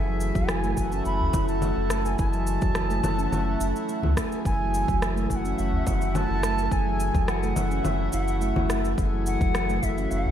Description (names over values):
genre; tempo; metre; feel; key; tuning
organic downtempo; 106 BPM; 4/4; straight; F# minor; A4 = 440 Hz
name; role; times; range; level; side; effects
reedy bansuri; melody; 0.0-10.3 s; E5 to B5; -31 LUFS; right 1 dB; ping-pong delay
pedal harmonium; accompaniment; 0.0-10.3 s; G#3 to G#4; -32 LUFS; left 2 dB; sidechain pumping, ping-pong delay
handpan; arpeggios; 0.0-10.1 s; E3 to E4; -30 LUFS; right 3 dB; ping-pong delay
warm sub bass; bass; 0.0-10.3 s; F#1 to C#2; -28 LUFS; equal; none
electronic shaker, rim click and congas; drums; 0.2-10.2 s; none; -32 LUFS; left 1 dB; none
udu; percussion; 0.3-10.3 s; none; -31 LUFS; left 1 dB; none
electronic kick drum; drums; 0.4-9.9 s; none; -28 LUFS; equal; overdrive
room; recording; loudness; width
moderate lush hall reverb, RT60 1.8 s, studio reverb; dreamy mix soaked in reverb; -22 LUFS; side -10 dB against mid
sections
0.0-10.3 A section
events
none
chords
0.0 F#m7